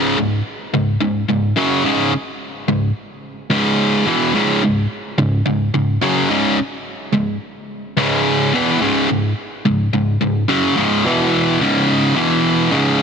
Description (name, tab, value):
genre	rock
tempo	108 BPM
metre	4/4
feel	straight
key	C# minor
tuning	A4 = 440 Hz
part	distorted electric guitar	solo	0.0-13.0 s	C#2 to F#3	-15 LUFS	equal	overdrive
room	light reverb, digital ambience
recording	heavily compressed radio sound, multiband compression, faint mains hum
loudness	-15 LUFS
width	side -6 dB against mid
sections	0.0-13.0 A section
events	none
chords	0.0 C#5; 11.1 E5; 11.6 C#5; 12.2 E5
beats	0.46 1.02 1.58 | 2.13 2.69 3.25 3.81 | 4.36 4.92 5.48 6.04 | 6.59 7.15 7.71 8.27 | 8.82 9.38 9.94 10.50 | 11.05 11.61 12.17 12.73